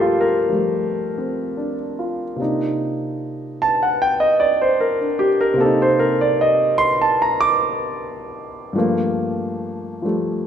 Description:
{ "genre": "solo jazz", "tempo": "76 BPM", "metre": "4/4", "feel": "swing 66% on 8ths, rubato", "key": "unclear", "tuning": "A4 = 438 Hz", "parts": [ { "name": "warm concert grand piano", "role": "solo", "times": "0.0-10.5 s", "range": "G2 to D6", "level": "-17 LUFS", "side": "equal", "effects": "none" } ], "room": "moderate recital hall reverb, RT60 1.6 s", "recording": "recorded in a church or concert hall", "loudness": "-17 LUFS", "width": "side -8 dB against mid", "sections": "0.0-10.5 A section", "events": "grand piano solo 0.0-10.5", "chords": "0.0 Gm9; 2.4 Cm9; 8.7 Gm9" }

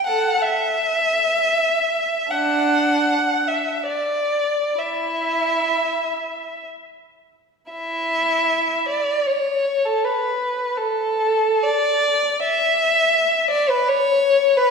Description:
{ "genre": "classical, free, expressive piece for unaccompanied violin", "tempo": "free time", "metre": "none", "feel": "none", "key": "unclear", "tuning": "A4 = 438 Hz", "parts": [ { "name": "warm violin", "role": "solo", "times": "0.0-14.7 s", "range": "D4 to F#5", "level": "-18 LUFS", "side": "equal", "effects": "none" } ], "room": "wet concert hall reverb, RT60 1.9 s", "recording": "minimal, uncompressed stereo recording", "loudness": "-18 LUFS", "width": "side -5 dB against mid", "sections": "0.0-7.7 A section; 7.7-14.7 A section", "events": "none", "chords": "none" }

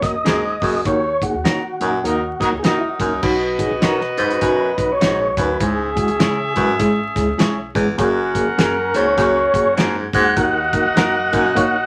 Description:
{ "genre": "uptempo 1960s-style soul", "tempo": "101 BPM", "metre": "4/4", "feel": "swing 61% on 8ths", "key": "B major", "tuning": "A4 = 442 Hz", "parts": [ { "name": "mellow tonewheel organ", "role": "melody", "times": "0.0-11.9 s", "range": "E4 to F#5", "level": "-22 LUFS", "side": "equal", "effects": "overdrive, fast rotary speaker" }, { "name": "mellow reed electric piano", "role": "accompaniment", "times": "0.0-11.8 s", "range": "G#3 to C#5", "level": "-24 LUFS", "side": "equal", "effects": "fast tremolo" }, { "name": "upright bass", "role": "bass", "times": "0.0-11.8 s", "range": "F#1 to D#3", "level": "-35 LUFS", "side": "equal", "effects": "none" }, { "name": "cloth-damped thuddy drum kit", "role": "drums", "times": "0.0-11.7 s", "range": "crash cymbal, hi-hat, kick drum, snare drum", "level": "-23 LUFS", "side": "equal", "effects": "none" }, { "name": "semi-hollow electric guitar", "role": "stabs", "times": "0.2-11.1 s", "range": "C#4 to C#5", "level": "-27 LUFS", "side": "equal", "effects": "none" }, { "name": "breathy baritone saxophone", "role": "riff", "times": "0.3-11.5 s", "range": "D#2 to B2", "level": "-23 LUFS", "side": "equal", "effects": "none" }, { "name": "clear horn section", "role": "second line", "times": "1.8-11.9 s", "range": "F#3 to F#5", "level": "-26 LUFS", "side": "equal", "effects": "none" } ], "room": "wet studio ambience, RT60 0.5 s", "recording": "vinyl crackle", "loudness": "-18 LUFS", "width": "mono", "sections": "0.0-3.2 A section; 3.2-11.9 B section", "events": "band accent 0.8-3.2", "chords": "0.0 F#add9; 0.8 D#m; 3.2 Badd9; 5.6 C#m; 8.0 F#add9; 10.4 D#m" }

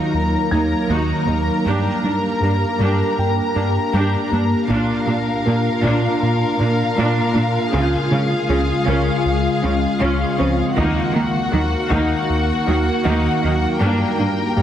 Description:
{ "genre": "cinematic, hybrid orchestral and electronic film score", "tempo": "79 BPM", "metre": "4/4", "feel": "straight", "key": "unclear", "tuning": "A4 = 440 Hz", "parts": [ { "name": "warm symphonic violin section", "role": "second line", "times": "0.0-14.6 s", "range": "Gb4 to Bb5", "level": "-24 LUFS", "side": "left 4 dB", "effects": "none" }, { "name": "rich symphonic viola section", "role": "accompaniment", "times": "0.0-14.6 s", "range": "Db3 to G4", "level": "-25 LUFS", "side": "right 1 dB", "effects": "none" }, { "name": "warbly tape-like pad", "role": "sustained chords", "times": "0.0-14.6 s", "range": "Db3 to F5", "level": "-22 LUFS", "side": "equal", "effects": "chorus, built-in reverb" }, { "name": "dark baby grand piano", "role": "texture", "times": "0.0-13.8 s", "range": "C4 to Ab6", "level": "-32 LUFS", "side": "left 2 dB", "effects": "digital delay" }, { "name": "round analog bass", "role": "riff", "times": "0.1-14.6 s", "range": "Db2 to Bb3", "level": "-22 LUFS", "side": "right 1 dB", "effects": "none" }, { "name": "harp-like synth pluck", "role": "arpeggios", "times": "0.5-14.6 s", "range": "Db3 to Bb4", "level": "-26 LUFS", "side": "right 1 dB", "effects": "chorus, digital delay" }, { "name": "rich symphonic cello section", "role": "bass", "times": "0.5-14.6 s", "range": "Eb2 to Eb3", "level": "-25 LUFS", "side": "right 1 dB", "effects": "none" }, { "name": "taiko ensemble", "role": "drums", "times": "4.7-6.2, 10.8-12.3 s", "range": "none", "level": "-31 LUFS", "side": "left 1 dB", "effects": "none" } ], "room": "wet concert hall reverb, RT60 2.2 s", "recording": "heavily compressed radio sound, multiband compression", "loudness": "-16 LUFS", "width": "side -10 dB against mid", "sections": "0.0-14.6 A section", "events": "build-up 0.0-14.6", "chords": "0.0 Ebm; 1.7 Gm; 4.7 Bb; 7.7 Db; 10.8 Ebm; 13.8 Gm" }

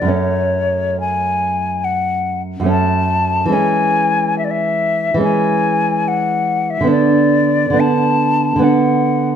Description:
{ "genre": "romantic duo for flute and classical guitar", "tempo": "71 BPM", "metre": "4/4", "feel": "rubato", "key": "unclear", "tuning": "A4 = 439 Hz", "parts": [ { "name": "mellow hollow silver concert flute", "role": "melody", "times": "0.0-9.4 s", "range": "C#5 to A5", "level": "-17 LUFS", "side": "left 3 dB", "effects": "none" }, { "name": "nylon-string guitar", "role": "accompaniment", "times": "0.0-9.4 s", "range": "F#2 to D4", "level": "-16 LUFS", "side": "right 2 dB", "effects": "none" } ], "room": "moderate recital hall reverb, RT60 1.3 s", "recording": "close, detailed microphones", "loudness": "-13 LUFS", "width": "side -8 dB against mid", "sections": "0.0-9.4 A section", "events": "none", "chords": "0.1 F#m; 3.5 C#m/E; 6.9 Bm7/D" }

